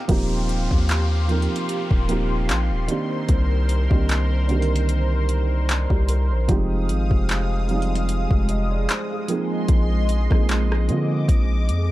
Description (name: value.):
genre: contemporary R&B.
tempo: 75 BPM.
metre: 4/4.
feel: swing 54% on 16ths.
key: Eb major.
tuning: A4 = 440 Hz.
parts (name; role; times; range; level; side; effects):
felt-muted upright piano; accompaniment; 0.0-11.9 s; D3 to Bb5; -26 LUFS; right 3 dB; none.
lush unison pad; sustained chords; 0.0-11.9 s; Ab3 to Eb6; -29 LUFS; equal; chorus, phaser.
swell and downlifter; sound effects; 0.0-6.5 s; none; -38 LUFS; left 1 dB; none.
long sustained 808-style bass; bass; 0.1-11.9 s; Eb1 to D3; -21 LUFS; equal; none.
smooth R&B drum kit; drums; 0.1-11.9 s; handclaps, hi-hat, kick drum, rim click; -21 LUFS; equal; overdrive.
room: little or no reverb.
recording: dark, warm production.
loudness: -19 LUFS.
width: side -16 dB against mid.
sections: 0.1-11.9 A section.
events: none.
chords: 0.1 Eb69; 2.9 Cm7; 6.5 Fm7; 9.3 Bb9sus4.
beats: | 0.09 0.89 1.69 2.49 | 3.29 4.09 4.89 5.69 | 6.49 7.29 8.09 8.89 | 9.69 10.49 11.29.